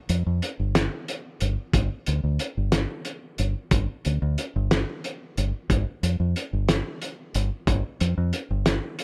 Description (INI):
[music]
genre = psychedelic rock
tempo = 61 BPM (dotted quarters)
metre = 6/8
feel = straight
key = unclear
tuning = A4 = 440 Hz
[part]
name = fingered electric bass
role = bass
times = 0.1-8.8 s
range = G1 to F2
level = -26 LUFS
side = equal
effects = none
[part]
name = cloth-damped thuddy drum kit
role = drums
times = 0.1-9.0 s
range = hi-hat, kick drum, snare drum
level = -28 LUFS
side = equal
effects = none
[sound]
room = little or no reverb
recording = none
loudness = -26 LUFS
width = mono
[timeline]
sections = 0.0-9.0 A section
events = none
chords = none